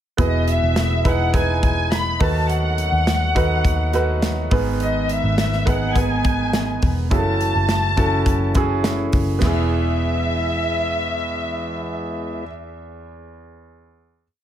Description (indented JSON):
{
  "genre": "piano-driven pop",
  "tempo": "104 BPM",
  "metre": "4/4",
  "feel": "straight",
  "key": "E major",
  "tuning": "A4 = 444 Hz",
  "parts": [
    { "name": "warm studio violin section", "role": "melody", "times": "0.2-12.4 s", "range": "D#5 to B5", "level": "-24 LUFS", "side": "left 1 dB", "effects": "plate reverb" },
    { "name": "clear grand piano", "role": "accompaniment", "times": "0.2-14.2 s", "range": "E2 to B4", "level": "-24 LUFS", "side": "right 3 dB", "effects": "plate reverb" },
    { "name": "percussive tonewheel organ", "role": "sustained chords", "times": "0.2-12.4 s", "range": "C#3 to G#4", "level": "-32 LUFS", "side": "left 1 dB", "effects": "overdrive, slow rotary speaker, plate reverb" },
    { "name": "vintage muted picked electric bass", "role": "bass", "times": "0.2-12.4 s", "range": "E1 to D#2", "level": "-22 LUFS", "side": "equal", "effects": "none" },
    { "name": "modern studio drum kit", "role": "drums", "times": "0.2-9.6 s", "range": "crash cymbal, hi-hat, kick drum, snare drum", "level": "-22 LUFS", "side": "equal", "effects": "none" }
  ],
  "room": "light reverb",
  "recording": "none",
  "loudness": "-17 LUFS",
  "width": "side -10 dB against mid",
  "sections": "0.2-9.4 chorus; 9.4-11.7 final chord",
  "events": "none",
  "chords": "0.2 Emaj7; 2.2 B7/D#; 4.5 G#m; 7.1 F#m7; 9.4 E"
}